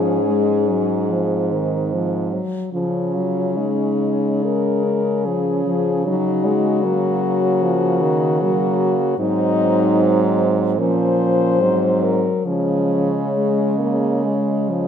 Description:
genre	classical, lyrical piece for horn quartet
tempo	65-81 BPM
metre	4/4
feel	rubato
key	Db major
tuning	A4 = 441 Hz
part	warm French horn	melody	0.0-14.9 s	Db4 to C5	-22 LUFS	left 6 dB	none
part	warm French horn	second line	0.0-14.9 s	Ab3 to F4	-24 LUFS	right 10 dB	none
part	mellow French horn	accompaniment	0.0-14.9 s	Eb3 to Bb3	-21 LUFS	left 2 dB	none
part	warm French horn	bass	0.0-14.9 s	Ab2 to Db3	-23 LUFS	right 3 dB	none
room	moderate scoring stage reverb, RT60 1.6 s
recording	close, detailed microphones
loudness	-16 LUFS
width	side -8 dB against mid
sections	0.0-14.9 A section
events	none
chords	0.0 Db/Ab; 1.1 Ab; 2.7 Db; 6.1 Ebm/Db; 9.2 Ab7; 10.8 Bbm; 11.6 Ab9; 12.5 Db

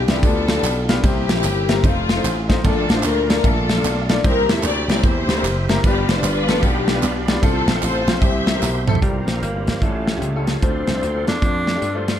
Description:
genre	uptempo gospel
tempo	150 BPM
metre	4/4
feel	swing 63% on 8ths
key	unclear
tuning	A4 = 440 Hz
part	warm studio string section	melody	0.0-9.0 s	A3 to E5	-22 LUFS	left 3 dB	none
part	bright baby grand piano	accompaniment	0.0-12.1 s	G2 to F5	-25 LUFS	left 3 dB	none
part	slap bass	bass	0.0-12.2 s	F1 to G2	-22 LUFS	equal	none
part	modern studio drum kit	drums	0.1-12.2 s	hi-hat, kick drum, ride cymbal, snare drum, toms	-20 LUFS	equal	none
part	tambourine and handclaps	percussion	0.1-8.9 s	none	-32 LUFS	right 7 dB	none
part	bright tonewheel organ	sustained chords	2.6-12.2 s	A3 to C6	-30 LUFS	right 4 dB	slow rotary speaker, chorus vibrato
part	breathy tenor saxophone	melody	9.0-12.0 s	G3 to D4	-25 LUFS	equal	none
part	dark French horn section	sustained chords	9.0-12.2 s	F3 to F4	-35 LUFS	right 3 dB	none
room	light reverb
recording	dark, warm production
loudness	-16 LUFS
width	side -10 dB against mid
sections	0.0-9.0 A section; 9.0-12.2 B section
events	drum fill 8.6-9.0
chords	0.0 G7; 1.0 C7; 1.8 F7; 2.6 Bbmaj7; 4.2 C7; 5.8 G7; 7.4 F; 8.2 C; 9.0 C7sus4; 9.8 A7b13; 10.6 Dm7

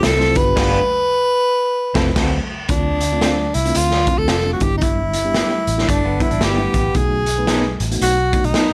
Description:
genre	uptempo 1960s-style soul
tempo	113 BPM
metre	4/4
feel	swing 61% on 8ths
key	G mixolydian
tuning	A4 = 440 Hz
part	breathy tenor saxophone	melody	0.0-8.7 s	D4 to B4	-21 LUFS	equal	none
part	mellow reed electric piano	accompaniment	0.0-8.7 s	G3 to C5	-27 LUFS	equal	fast tremolo
part	electric guitar through a small old amp	stabs	0.0-8.7 s	B3 to B4	-26 LUFS	equal	tremolo
part	vintage muted fingered electric bass	bass	0.0-8.7 s	F1 to D2	-24 LUFS	equal	none
part	raw garage drum kit	drums	0.0-8.7 s	crash cymbal, hi-hat, kick drum, snare drum	-23 LUFS	equal	none
part	electric guitar through a small old amp	riff	0.6-0.8, 5.9-6.9 s	D3 to G4	-30 LUFS	equal	none
room	light reverb, studio ambience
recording	none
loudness	-18 LUFS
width	mono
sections	0.0-2.7 A section; 2.7-8.7 B section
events	band accent 0.6-2.7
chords	0.3 G7; 1.6 Fmaj7; 2.2 D7; 2.7 Dm7; 4.6 G6; 7.0 B7

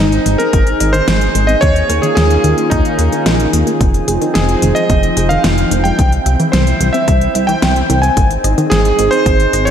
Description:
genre	synthwave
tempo	110 BPM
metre	4/4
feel	straight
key	F minor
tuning	A4 = 440 Hz
part	clear electric grand piano	melody	0.0-9.7 s	Eb4 to Ab5	-16 LUFS	right 1 dB	ping-pong delay, slapback echo
part	lush unison pad	sustained chords	0.0-9.7 s	Eb3 to G5	-18 LUFS	equal	chorus, sidechain pumping
part	wide unison pluck	arpeggios	0.0-9.7 s	Eb3 to E5	-21 LUFS	left 1 dB	none
part	chorused synth bass	bass	0.0-9.7 s	F1 to Eb2	-15 LUFS	equal	tube saturation
part	pop drum kit	drums	0.1-9.7 s	hi-hat, snare drum	-20 LUFS	equal	slapback echo
part	electronic kick drum	drums	0.5-9.4 s	none	-14 LUFS	equal	overdrive
room	moderate lush hall reverb, RT60 1.8 s, digital ambience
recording	big arena sound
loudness	-10 LUFS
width	side -8 dB against mid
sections	0.0-9.7 A section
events	none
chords	0.0 Ab; 1.6 Eb7sus4; 3.8 Fm7; 6.0 C; 8.2 Ab

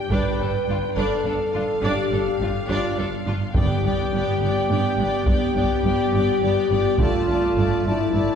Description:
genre	cinematic, epic orchestral film score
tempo	70 BPM (dotted quarters)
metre	6/8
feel	straight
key	G mixolydian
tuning	A4 = 439 Hz
part	rich studio violin section	melody	0.0-8.4 s	F5 to A5	-34 LUFS	left 4 dB	none
part	clear French horn section	sustained chords	0.0-8.4 s	E4 to B4	-23 LUFS	left 3 dB	none
part	clear chamber violin section	second line	0.1-8.4 s	F4 to D5	-30 LUFS	left 1 dB	none
part	rich symphonic viola section	accompaniment	0.1-8.4 s	A3 to D4	-30 LUFS	right 2 dB	none
part	dark symphonic cello section	bass	0.1-8.2 s	G2	-27 LUFS	right 2 dB	none
part	rich symphonic double bass section	bass	0.1-8.2 s	G1	-28 LUFS	right 2 dB	none
part	taiko ensemble	drums	0.1-7.5 s	none	-26 LUFS	equal	none
part	timpani	percussion	3.6-4.4 s	G2	-30 LUFS	right 2 dB	none
room	wet concert hall reverb, RT60 1.9 s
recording	heard from further back in the room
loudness	-19 LUFS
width	side -7 dB against mid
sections	0.0-8.4 A section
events	none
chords	0.1 Dm/G; 3.5 G; 7.0 Dm/G

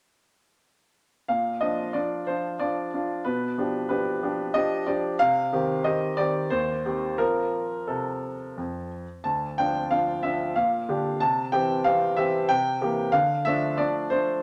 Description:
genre	classical-period piano sonatina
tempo	92 BPM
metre	3/4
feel	rubato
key	Bb major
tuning	A4 = 440 Hz
part	bright grand piano	solo	1.3-14.4 s	D2 to A5	-26 LUFS	equal	none
room	moderate stone room reverb, RT60 1.4 s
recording	none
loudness	-26 LUFS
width	mono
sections	1.3-14.4 A section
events	none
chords	1.3 Bb; 3.3 G7/B; 5.2 Cm; 6.5 Cm/Eb; 7.2 F; 9.2 Dm; 10.6 Gm7/Bb; 11.2 C; 12.5 C7; 13.1 Dm

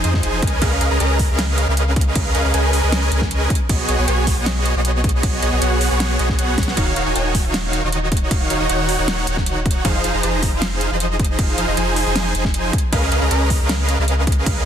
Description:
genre	future bass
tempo	156 BPM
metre	4/4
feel	half-time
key	unclear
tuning	A4 = 439 Hz
part	supersaw chords	riff	0.0-14.6 s	Eb3 to Bb5	-20 LUFS	right 1 dB	sidechain pumping, tape echo
part	saturated sub bass	bass	0.0-14.6 s	Eb1 to F2	-21 LUFS	equal	sidechain pumping
part	pop drum kit	drums	0.0-14.5 s	crash cymbal, hi-hat, snare drum	-25 LUFS	right 1 dB	overdrive
part	electronic kick drum	drums	0.1-14.5 s	none	-20 LUFS	equal	overdrive
room	light reverb, digital ambience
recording	dense, heavily limited modern master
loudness	-16 LUFS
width	side -9 dB against mid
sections	0.0-14.7 A section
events	drum fill 6.6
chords	0.4 Db13; 3.5 B69; 6.8 Ebm9; 9.8 Fm7; 12.7 Db13

